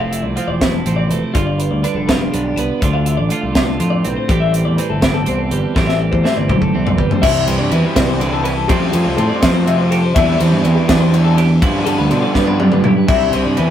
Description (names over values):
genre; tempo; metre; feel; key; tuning
math rock and midwest emo; 82 BPM (dotted quarters); 6/8; straight; unclear; A4 = 440 Hz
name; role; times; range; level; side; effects
twelve-string electric guitar; accompaniment; 0.0-13.7 s; E2 to G4; -20 LUFS; right 4 dB; none
twelve-string electric guitar; arpeggios; 0.0-13.7 s; F4 to F5; -22 LUFS; left 5 dB; tape echo
growling fingered electric bass; bass; 0.0-13.7 s; E1 to B2; -17 LUFS; equal; overdrive
crisp fusion drum kit; drums; 0.1-13.7 s; crash cymbal, hi-hat, kick drum, ride cymbal, snare drum, toms; -18 LUFS; equal; none
crunchy overdriven guitar; riff; 7.2-13.7 s; C3 to F4; -22 LUFS; left 1 dB; none
room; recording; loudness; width
light reverb; rough rehearsal-room recording; -13 LUFS; side -10 dB against mid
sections
0.0-7.2 A section; 7.2-13.7 B section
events
drum fill 5.8-7.2, 12.4-13.1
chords
0.0 Fmaj7; 1.4 G7; 2.8 Dm7; 4.3 Am7; 7.2 Cmaj9; 8.7 Fmaj9; 10.2 Cmaj9/E; 11.6 G13; 13.1 Cmaj9